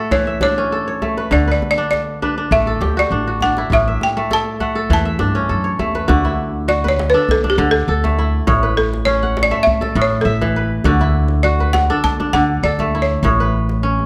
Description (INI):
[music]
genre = west african traditional, West African string and xylophone music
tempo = 101 BPM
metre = 4/4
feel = straight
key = D major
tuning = A4 = 441 Hz
[part]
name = balafon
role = melody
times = 0.0-13.6 s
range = G4 to A5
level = -20 LUFS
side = equal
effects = none
[part]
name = kora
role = arpeggios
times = 0.0-14.1 s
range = A2 to F#5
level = -21 LUFS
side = equal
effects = none
[part]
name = djembe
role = percussion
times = 0.1-14.1 s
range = none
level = -27 LUFS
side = equal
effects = none
[part]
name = upright bass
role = bass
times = 1.3-14.1 s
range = A1 to G2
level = -21 LUFS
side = equal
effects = none
[sound]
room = moderate recital hall reverb, RT60 1.4 s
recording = none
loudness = -17 LUFS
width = mono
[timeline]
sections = 0.0-6.1 A section; 6.1-14.1 B section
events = balafon solo 6.1-14.1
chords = 0.0 A; 1.3 D; 3.7 A; 6.1 D; 8.5 A; 10.8 D; 13.2 A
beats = 0.12 0.72 | 1.32 1.92 2.51 3.11 | 3.71 4.30 4.90 5.50 | 6.09 6.68 7.28 7.87 | 8.47 9.06 9.66 10.25 | 10.85 11.44 12.04 12.63 | 13.23 13.83